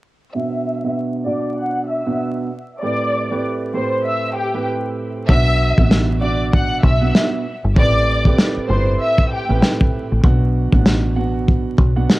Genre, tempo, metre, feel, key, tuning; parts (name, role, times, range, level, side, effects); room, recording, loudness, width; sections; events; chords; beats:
hip hop, boom-bap hip-hop; 97 BPM; 4/4; swing 59% on 16ths; A4 = 440 Hz
warm symphonic violin section; melody; 0.3-9.6 s; G4 to F#6; -21 LUFS; left 1 dB; high-pass filter, low-pass filter, cassette tape, analog delay
dark grand piano; accompaniment; 0.3-12.2 s; A2 to F#5; -22 LUFS; right 3 dB; cassette tape, high-pass filter, low-pass filter
deep dub fingered electric bass; bass; 5.3-12.1 s; G1 to B1; -18 LUFS; equal; transformer saturation
warm soul drum kit; drums; 5.3-12.2 s; kick drum, snare drum; -15 LUFS; equal
small room ambience; home recording on cassette, vinyl crackle; -15 LUFS; side -18 dB against mid
0.3-5.3 A section; 5.3-12.2 B section
filter sweep 0.3-5.3; hi-hats muted 5.3-12.2
0.3 Bm; 2.8 Am7; 5.3 Bm; 7.8 Am7; 10.2 Bm
| 0.34 0.96 1.58 2.20 | 2.82 3.44 4.05 4.67 | 5.29 5.91 6.53 7.15 | 7.76 8.38 9.00 9.62 | 10.24 10.86 11.48 12.10